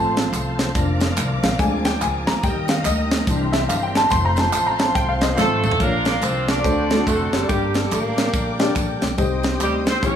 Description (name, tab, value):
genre	uptempo gospel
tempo	142 BPM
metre	4/4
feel	swing 62% on 8ths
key	Bb major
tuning	A4 = 439 Hz
part	warm upright piano	accompaniment	0.0-10.2 s	G2 to C6	-23 LUFS	left 2 dB	none
part	overdriven tonewheel organ	sustained chords	0.0-10.2 s	D3 to C5	-29 LUFS	right 3 dB	slow rotary speaker, chorus vibrato
part	warm symphonic string section	sustained chords	0.0-10.2 s	C5 to Eb6	-31 LUFS	left 3 dB	none
part	upright bass	bass	0.0-10.2 s	F1 to E2	-24 LUFS	equal	none
part	tight funk drum kit	drums	0.2-10.2 s	hi-hat, kick drum, snare drum, toms	-22 LUFS	right 1 dB	none
part	tambourine and handclaps	percussion	0.2-10.2 s	none	-32 LUFS	right 5 dB	none
part	breathy tenor saxophone	melody	5.3-10.2 s	G3 to D4	-24 LUFS	right 3 dB	none
part	clear horn section	melody	5.4-10.2 s	Bb3 to D5	-25 LUFS	equal	none
room	moderate large studio reverb, RT60 0.9 s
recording	small room ambience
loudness	-17 LUFS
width	side -9 dB against mid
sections	0.0-5.8 A section; 5.8-10.2 B section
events	upright piano solo 0.0-5.8; drum fill 5.4-5.8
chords	0.0 F; 0.8 Bb/F; 1.6 Bb7/D; 2.4 Eb; 3.3 C7; 4.1 F; 5.8 Bb; 6.7 D7; 7.5 Gm; 9.2 Cm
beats	0.33 | 0.75 1.18 1.60 2.02 | 2.44 2.86 3.28 3.70 | 4.12 4.54 4.96 5.38 | 5.81 6.23 6.65 7.07 | 7.50 7.92 8.34 8.77 | 9.19 9.61 10.03